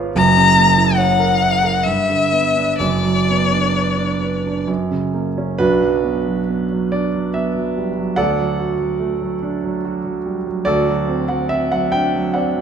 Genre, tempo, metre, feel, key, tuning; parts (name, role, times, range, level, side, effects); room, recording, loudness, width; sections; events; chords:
classical, romantic duo for violin and grand piano; 61-75 BPM; 3/4; rubato; B minor; A4 = 436 Hz
warm concert grand piano; accompaniment; 0.0-12.6 s; F#1 to G5; -17 LUFS; right 3 dB
rich violin; melody; 0.2-4.6 s; D5 to A#5; -16 LUFS; left 5 dB
wet recital hall reverb, RT60 1.6 s; minimal, uncompressed stereo recording; -15 LUFS; side -7 dB against mid
0.0-5.6 A section; 5.6-12.6 B section
0.2 F#7; 1.9 G; 2.8 Bm/F#; 4.7 F#; 5.6 Bm; 8.2 D; 10.7 D7